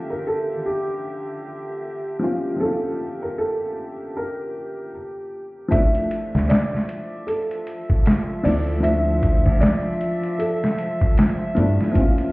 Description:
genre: trip hop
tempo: 77 BPM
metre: 4/4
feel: swing 58% on 16ths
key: D harmonic minor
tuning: A4 = 440 Hz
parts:
  - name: felt-muted upright piano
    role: melody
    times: 0.0-11.1 s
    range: G4 to E5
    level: -26 LUFS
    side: equal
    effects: tape echo
  - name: dark upright piano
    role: accompaniment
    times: 0.0-12.3 s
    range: F3 to F4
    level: -27 LUFS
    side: left 1 dB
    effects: tremolo, vintage 12-bit sampler grit, tape echo
  - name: dark chamber string section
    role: sustained chords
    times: 0.0-12.3 s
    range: D3 to E5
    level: -29 LUFS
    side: equal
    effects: vintage 12-bit sampler grit, low-pass filter
  - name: bowed-like drone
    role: texture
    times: 0.0-4.9 s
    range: G4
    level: -36 LUFS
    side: right 1 dB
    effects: built-in reverb
  - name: trip hop sampler-style drum kit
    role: drums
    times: 5.7-12.3 s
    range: hi-hat, kick drum, snare drum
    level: -19 LUFS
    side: equal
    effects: none
  - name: modern bright fingered electric bass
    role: bass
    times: 6.3-11.8 s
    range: D2 to G2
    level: -20 LUFS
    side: equal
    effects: none
room: light reverb, studio ambience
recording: heard muffled through a wall, stone room reverb, EQ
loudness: -19 LUFS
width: side -22 dB against mid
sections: 0.0-5.7 A section; 5.7-12.3 B section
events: none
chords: 0.0 Bbm; 5.7 Dmadd9

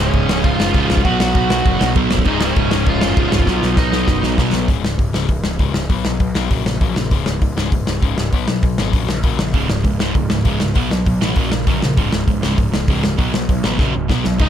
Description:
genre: punk rock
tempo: 198 BPM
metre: 4/4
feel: straight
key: Db mixolydian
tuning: A4 = 439 Hz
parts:
  - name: smooth overdriven lead guitar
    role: melody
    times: 0.0-4.3, 14.4-14.5 s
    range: Db4 to Gb5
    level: -22 LUFS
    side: equal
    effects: digital delay
  - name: overdriven semi-hollow guitar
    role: riff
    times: 0.0-14.5 s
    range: Db2 to Cb4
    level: -22 LUFS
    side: left 11 dB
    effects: none
  - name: overdriven semi-hollow guitar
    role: riff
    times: 0.0-4.7 s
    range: Db2 to Cb4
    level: -23 LUFS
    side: equal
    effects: none
  - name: sludgy distorted guitar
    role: riff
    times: 0.0-4.7, 9.5-14.5 s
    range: Db2 to Cb4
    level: -21 LUFS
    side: right 10 dB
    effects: overdrive
  - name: fuzz picked electric bass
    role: bass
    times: 0.0-14.5 s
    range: Db1 to Cb2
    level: -22 LUFS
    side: equal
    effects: overdrive
  - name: loose indie drum kit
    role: drums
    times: 0.1-14.5 s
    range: crash cymbal, hi-hat, kick drum, snare drum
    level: -18 LUFS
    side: equal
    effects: none
room: little or no reverb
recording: none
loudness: -14 LUFS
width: side -10 dB against mid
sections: 0.0-4.7 A section; 4.7-14.4 B section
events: drum fill 3.5-4.7, 13.8-14.4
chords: 0.0 Db; 1.0 Cb5; 2.3 Db; 3.5 Cb; 4.7 Db5; 5.9 Cb5; 6.5 Gb/Bb; 7.1 Db5; 8.3 Cb5; 8.9 Gb/Bb; 9.5 Db5; 10.8 Cb5; 11.4 Gb/Bb; 12.0 Db5; 13.2 Cb5; 13.8 Gb/Bb; 14.1 Cb5

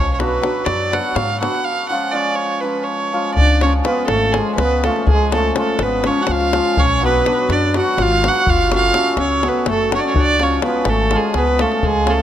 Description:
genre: balkan folk, Balkan wedding band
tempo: 247 BPM (eighths)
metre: 7/8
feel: straight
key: C# phrygian dominant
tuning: A4 = 443 Hz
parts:
  - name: rich fiddle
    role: melody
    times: 0.0-12.2 s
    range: G#4 to F#5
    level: -18 LUFS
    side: right 4 dB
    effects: none
  - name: upright bass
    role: bass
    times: 0.0-12.2 s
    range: F#1 to G#2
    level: -21 LUFS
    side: equal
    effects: none
  - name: hammered dulcimer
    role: accompaniment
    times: 0.2-12.2 s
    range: E#3 to F#4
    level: -22 LUFS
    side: left 1 dB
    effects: none
  - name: davul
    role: percussion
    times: 0.2-12.2 s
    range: none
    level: -22 LUFS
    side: left 3 dB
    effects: none
  - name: mellow clarinet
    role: second line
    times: 3.4-12.2 s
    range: G#3 to F#4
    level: -22 LUFS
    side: left 4 dB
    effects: none
room: light reverb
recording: close, detailed microphones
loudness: -14 LUFS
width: side -11 dB against mid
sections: 0.0-3.4 A section; 3.4-12.2 A section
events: none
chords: 0.0 Bm; 1.7 C#; 6.8 Bm; 8.5 F#m; 10.2 C#

